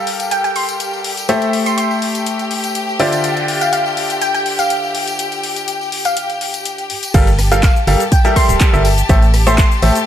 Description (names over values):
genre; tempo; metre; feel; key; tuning
piano house; 123 BPM; 4/4; straight; D minor; A4 = 441 Hz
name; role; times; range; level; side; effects
clear studio string section; sustained chords; 0.0-10.1 s; G4 to A5; -22 LUFS; left 3 dB; sidechain pumping
bright grand piano; riff; 0.0-10.0 s; D3 to F5; -18 LUFS; left 1 dB; sidechain pumping
house drum kit; drums; 0.1-10.0 s; crash cymbal, handclaps, hi-hat, rim click, shaker; -23 LUFS; left 3 dB; none
tambourine; percussion; 0.2-10.0 s; none; -30 LUFS; left 3 dB; none
glassy wavetable pluck; melody; 0.3-9.7 s; F5 to C6; -20 LUFS; equal; chorus, digital delay
organ-like FM bass; bass; 7.1-9.9 s; D1 to A1; -14 LUFS; equal; sidechain pumping
electronic kick drum; drums; 7.1-9.7 s; none; -12 LUFS; equal; none
room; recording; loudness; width
light reverb; none; -13 LUFS; side -10 dB against mid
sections
0.0-7.1 A section; 7.1-10.1 B section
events
drop 7.1-10.1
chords
0.0 Gm9; 1.3 Am7; 3.0 Dm11; 7.1 Gm9; 9.1 Am7